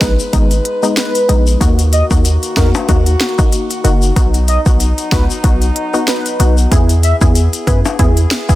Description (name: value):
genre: dancehall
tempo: 94 BPM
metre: 4/4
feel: swing 56% on 16ths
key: G# minor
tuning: A4 = 440 Hz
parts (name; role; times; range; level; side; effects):
- warm velvety synth lead; melody; 0.0-7.8 s; A#4 to E5; -20 LUFS; equal; chorus, digital delay
- wavetable chord stab; accompaniment; 0.0-8.6 s; G#3 to G#4; -19 LUFS; left 2 dB; none
- mellow French horn section; sustained chords; 0.0-8.6 s; D#3 to B4; -23 LUFS; left 1 dB; sidechain pumping
- hard-hitting 808-style bass; bass; 0.0-8.3 s; F#1 to F#2; -12 LUFS; equal; none
- afro-pop drum kit; drums; 0.0-8.6 s; hi-hat, kick drum, snare drum; -14 LUFS; equal; none
- tube shaker and timbales; percussion; 0.0-8.6 s; none; -24 LUFS; left 6 dB; none
room: digital ambience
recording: dense, heavily limited modern master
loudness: -10 LUFS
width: side -16 dB against mid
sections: 0.0-8.6 A section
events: none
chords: 0.0 G#m; 1.6 D#m; 4.2 B; 6.7 E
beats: 0.33 0.97 | 1.61 2.25 2.89 3.52 | 4.16 4.80 5.44 6.08 | 6.72 7.36 7.99